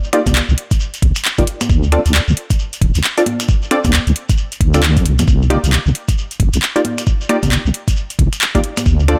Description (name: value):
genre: UK garage, two-step garage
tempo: 134 BPM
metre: 4/4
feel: swing 61% on 16ths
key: C dorian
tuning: A4 = 442 Hz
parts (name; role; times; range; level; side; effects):
- shekere; percussion; 0.0-9.1 s; none; -30 LUFS; equal; none
- punchy chord stab; stabs; 0.1-9.2 s; Bb3 to D5; -20 LUFS; equal; chorus, vintage 12-bit sampler grit, dub echo
- garage drum kit; drums; 0.1-9.2 s; congas, finger snaps, handclaps, hi-hat; -21 LUFS; equal; overdrive, small room reverb
- deep soft wobble bass; bass; 0.3-9.2 s; D1 to F2; -16 LUFS; equal; chorus, sidechain pumping
- electronic kick drum; drums; 0.3-9.0 s; none; -18 LUFS; equal; overdrive, small room reverb
room: digital ambience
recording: none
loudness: -15 LUFS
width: mono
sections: 0.0-9.2 A section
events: none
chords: 0.0 Cm11; 1.5 N.C.; 5.3 Cm11; 8.6 Dm7